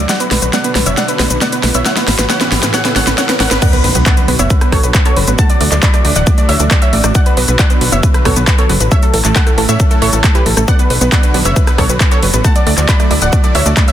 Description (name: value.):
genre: uplifting trance.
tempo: 136 BPM.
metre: 4/4.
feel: straight.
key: B minor.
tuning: A4 = 444 Hz.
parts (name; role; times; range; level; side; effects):
wide unison pluck; melody; 0.0-13.9 s; G4 to B5; -18 LUFS; equal; cassette tape, sidechain pumping.
warm grand piano; second line; 0.0-13.9 s; A5 to B6; -23 LUFS; left 2 dB; sidechain pumping.
supersaw pad; sustained chords; 0.0-13.9 s; A2 to F#4; -22 LUFS; right 1 dB; vintage 12-bit sampler grit, sidechain pumping.
wide unison pluck; arpeggios; 0.0-13.8 s; A3 to E5; -22 LUFS; right 5 dB; sidechain pumping.
tight sequencer bass; bass; 0.0-13.7 s; D1 to A2; -15 LUFS; equal; sidechain pumping.
riser and impact; sound effects; 0.1-5.4 s; none; -22 LUFS; right 1 dB; none.
big-room dance drum kit; drums; 0.1-13.9 s; crash cymbal, handclaps, hi-hat, rim click, shaker, snare drum; -16 LUFS; equal; overdrive, studio reverb.
electronic kick drum; drums; 3.6-13.9 s; none; -11 LUFS; equal; overdrive, studio reverb.
room: digital ambience.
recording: dense, heavily limited modern master.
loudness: -9 LUFS.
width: side -11 dB against mid.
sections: 0.0-3.6 A section; 3.6-13.9 B section.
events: build-up 0.0-3.6; drum fill 0.0-3.6; filter sweep on synth arpeggio sound 0.0-3.6; riser 0.1-3.6; drop 3.6-13.9; impact 3.6-5.4.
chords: 0.1 Bm; 1.9 A; 3.6 Bm; 5.4 Dadd9; 7.2 Bm; 8.9 A; 10.7 Bm; 12.4 Dadd9.